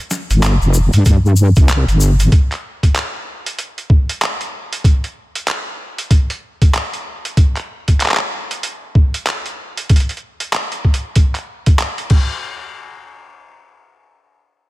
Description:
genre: glitch hop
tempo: 95 BPM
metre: 4/4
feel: swing 62% on 16ths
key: unclear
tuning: A4 = 440 Hz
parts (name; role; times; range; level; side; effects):
- boom bap sampler-style drum kit; drums; 0.1-12.3 s; crash cymbal, handclaps, hi-hat, snare drum; -21 LUFS; equal; small room ambience
- tube shaker; percussion; 0.1-2.3 s; none; -26 LUFS; left 4 dB; none
- wobble bass; bass; 0.3-2.3 s; F1 to G2; -11 LUFS; equal; chorus, tube saturation
- electronic kick drum; drums; 1.1-12.3 s; none; -11 LUFS; equal; small room ambience
room: digital ambience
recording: echo-heavy mix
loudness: -13 LUFS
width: side -18 dB against mid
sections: 0.0-12.4 A section; 12.4-14.7 B section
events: none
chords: none

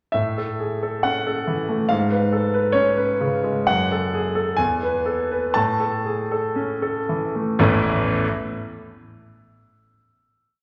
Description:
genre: classical, romantic character piece for solo piano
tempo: 56-71 BPM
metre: 2/4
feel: rubato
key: A major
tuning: A4 = 441 Hz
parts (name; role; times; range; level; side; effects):
- clear concert grand piano; solo; 0.1-8.2 s; A1 to A5; -22 LUFS; equal; none
room: wet recital hall reverb, RT60 1.9 s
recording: none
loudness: -22 LUFS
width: mono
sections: 0.1-7.6 A section; 7.6-9.4 final chord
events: slowing down 2.8-7.6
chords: 0.1 A; 1.9 C#7/G#; 3.7 F#m; 4.6 E; 5.6 A

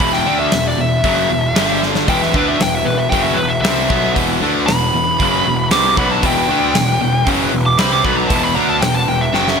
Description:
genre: hard rock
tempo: 116 BPM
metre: 4/4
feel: straight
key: E minor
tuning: A4 = 440 Hz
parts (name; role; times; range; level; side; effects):
- high-gain lead guitar; melody; 0.0-9.6 s; B4 to D6; -18 LUFS; equal; distortion
- cranked stack guitar; riff; 0.0-9.6 s; E2 to D4; -20 LUFS; left 10 dB; overdrive
- cranked stack guitar; riff; 0.0-9.6 s; E2 to D4; -20 LUFS; right 10 dB; overdrive, wide subtle chorus
- fuzz picked electric bass; bass; 0.0-9.6 s; E1 to D2; -22 LUFS; right 1 dB; overdrive
- huge arena drum kit; drums; 0.0-9.6 s; hi-hat, kick drum, snare drum; -20 LUFS; equal; none
- overdriven tonewheel organ; sustained chords; 2.1-9.6 s; E3 to B3; -29 LUFS; equal; none
room: moderate plate reverb, RT60 1.9 s, small room ambience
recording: bright 1980s-style digital production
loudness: -13 LUFS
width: side -6 dB against mid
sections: 0.0-9.6 A section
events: lead electric guitar solo 0.0-9.6; drum fill 1.8, 9.3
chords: 0.0 E5; 1.6 G5; 2.1 Em

